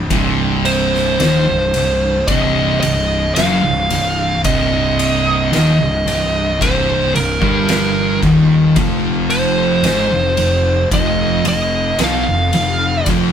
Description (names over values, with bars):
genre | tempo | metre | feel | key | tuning
stoner and doom metal | 56 BPM | 4/4 | straight | C minor | A4 = 442 Hz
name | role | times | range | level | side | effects
fuzz picked electric bass | bass | 0.0-13.3 s | C1 to B1 | -21 LUFS | left 1 dB | overdrive
thick fuzz guitar | riff | 0.1-13.3 s | C2 to B3 | -19 LUFS | left 4 dB | distortion
thick fuzz guitar | riff | 0.1-13.3 s | C2 to B3 | -20 LUFS | right 5 dB | distortion
oversized low-tuned drum kit | drums | 0.1-13.3 s | kick drum, ride cymbal, snare drum | -21 LUFS | equal | none
fuzz lead guitar | melody | 0.7-13.1 s | Bb4 to F5 | -17 LUFS | right 1 dB | distortion
room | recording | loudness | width
light reverb | band playing live in one room | -13 LUFS | side -8 dB against mid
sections
0.0-13.3 A section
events
none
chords
0.0 Cm; 8.8 F5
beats
| 0.10 1.19 2.28 3.36 | 4.44 5.53 6.61 7.69 | 8.77 9.85 10.93 12.00 | 13.08